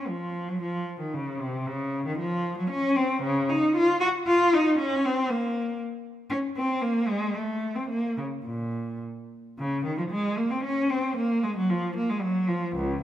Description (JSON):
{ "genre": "classical, baroque-style suite movement for unaccompanied cello", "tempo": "105-120 BPM", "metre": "3/4", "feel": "rubato", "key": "Db major, Bb minor from 3.2 s", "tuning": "A4 = 440 Hz", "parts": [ { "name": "warm cello", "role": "solo", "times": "0.0-13.0 s", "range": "Db2 to Gb4", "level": "-24 LUFS", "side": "equal", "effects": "none" } ], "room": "moderate scoring stage reverb, RT60 1.6 s", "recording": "none", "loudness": "-24 LUFS", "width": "side -12 dB against mid", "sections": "0.0-9.6 A section; 9.6-13.0 B section", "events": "none", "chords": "none", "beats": "| 0.08 0.61 1.13 | 1.65 2.18 2.70 | 3.22 3.74 4.26 | 4.77 5.28 5.78 | 6.29 6.80 7.33 | 7.89 8.45 9.02 | 9.57 10.11 10.64 | 11.17 11.70 12.22 | 12.76" }